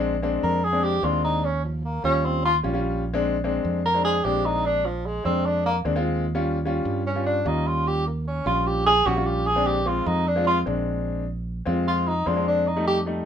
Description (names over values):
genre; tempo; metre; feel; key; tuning
jazz; 150 BPM; 4/4; straight; Bb mixolydian; A4 = 440 Hz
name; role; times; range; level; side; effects
clear concert grand piano; accompaniment; 0.0-13.3 s; G3 to G4; -26 LUFS; left 3 dB; none
fingered electric bass; bass; 0.0-13.2 s; Bb1 to G2; -27 LUFS; right 1 dB; none
warm tenor saxophone; melody; 0.4-13.0 s; F3 to Bb4; -23 LUFS; right 1 dB; none
room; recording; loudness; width
moderate studio ambience, RT60 0.4 s; minimal, uncompressed stereo recording; -21 LUFS; side -8 dB against mid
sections
0.0-13.3 A section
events
tenor saxophone solo 0.0-13.3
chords
0.0 Bb9; 1.4 Eb9; 3.0 Bb9; 6.3 Eb9; 9.5 Bb9; 12.7 F9